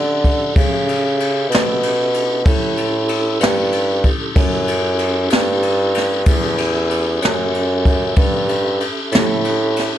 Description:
slow blues; 63 BPM (dotted quarters); 12/8; straight; A mixolydian; A4 = 440 Hz
tonewheel organ; sustained chords; 0.0-10.0 s; C#4 to E5; -24 LUFS; equal; slow rotary speaker, chorus vibrato
mellow bassoon; bass; 0.0-10.0 s; E2 to D3; -18 LUFS; right 1 dB
jazz brush drum kit; drums; 0.2-9.9 s; kick drum, ride cymbal, snare drum; -18 LUFS; equal
little or no reverb; dark, warm production; -14 LUFS; side -11 dB against mid
0.0-10.0 A section
0.0 A7

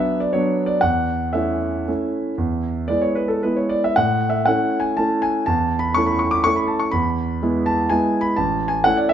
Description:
classical, piano waltz; 110-130 BPM; 3/4; rubato; A major; A4 = 440 Hz
warm concert grand piano; solo; 0.0-9.1 s; A1 to D6; -18 LUFS; equal
moderate large studio reverb, RT60 1.3 s; -18 LUFS; side -9 dB against mid
0.0-9.1 A section
0.0 Bm; 0.8 A/E; 2.4 E; 4.0 A; 6.9 E; 8.4 A

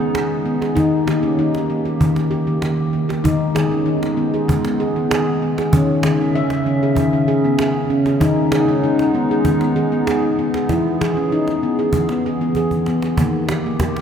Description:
world meditative, meditative tuned percussion; 97 BPM; 4/4; straight; A4 = 440 Hz
warbly tape-like pad; sustained chords; 0.0-14.0 s; Db3 to Fb5; -22 LUFS; right 1 dB; chorus, built-in reverb
handpan; arpeggios; 0.0-14.0 s; Eb3 to Fb5; -17 LUFS; left 1 dB
cajon; percussion; 0.1-14.0 s; -24 LUFS; right 2 dB
wet cathedral reverb, RT60 6.2 s; in a vast, echoing space; -15 LUFS; side -8 dB against mid
0.0-13.2 A section
drum fill 12.6-13.2
0.0 Abm/Eb; 0.8 Eb; 3.2 Abm/Eb; 5.7 Dbm; 8.2 Abm/Eb; 10.7 E; 13.2 Eb

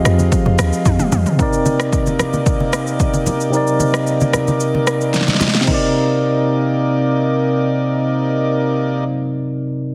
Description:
amapiano; 112 BPM; 4/4; straight; C minor; A4 = 443 Hz
tine electric piano; accompaniment; 0.0-9.9 s; C3 to Eb5; -20 LUFS; equal
pedal harmonium; sustained chords; 0.0-9.0 s; C3 to D5; -25 LUFS; equal
deep log drum bass; bass; 0.0-1.3 s; Eb2 to F2; -18 LUFS; equal
deep house drum kit; drums; 0.1-5.8 s; crash cymbal, kick drum, rim click, shaker, snare drum, toms; -21 LUFS; equal; overdrive, vintage 12-bit sampler grit
congas; percussion; 0.1-5.9 s; -24 LUFS; equal
moderate plate reverb, RT60 1.7 s; heavily compressed radio sound, multiband compression; -17 LUFS; mono
0.0-1.4 A section; 1.4-5.7 B section; 5.7-9.9 C section
drum fill 0.9-1.4, 5.1-5.7
0.0 Fm9; 1.4 Cm9

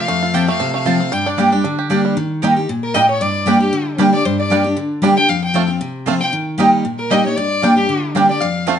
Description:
bluegrass; 231 BPM; 4/4; swing 55% on 8ths; G minor; A4 = 442 Hz
bluegrass banjo; melody; 0.0-8.7 s; F3 to G4; -22 LUFS; right 6 dB
clear fiddle; melody; 0.0-8.8 s; G4 to G5; -20 LUFS; left 3 dB; plate reverb
lap resonator guitar; second line; 0.0-8.8 s; G4 to G5; -25 LUFS; left 3 dB
picked steel-string acoustic guitar; accompaniment; 0.0-8.8 s; F2 to G4; -17 LUFS; left 1 dB
mandolin; stabs; 0.3-8.8 s; Bb3 to A5; -17 LUFS; right 2 dB
wet studio reverb, RT60 0.7 s; nothing above 10.4 kHz; -14 LUFS; side -8 dB against mid
0.0-2.2 A section; 2.2-8.8 B section
0.0 F; 1.1 Gm; 2.2 Eb; 3.2 Gm; 5.3 F; 6.3 Eb; 7.4 Gm

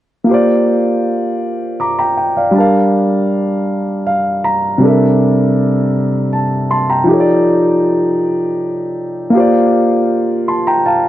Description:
R&B; 53 BPM (dotted quarters); 6/8; straight; Bb major; A4 = 440 Hz
dark baby grand piano; solo; 0.2-11.1 s; C3 to D6; -11 LUFS; equal
light reverb; dry, close 1970s-style studio recording; -11 LUFS; side -13 dB against mid
0.3-9.3 A section; 9.3-11.1 B section
grand piano fill 3.7-4.8
0.3 Bb69; 2.5 Gm9; 4.8 C13; 7.1 F13; 9.3 Bb69

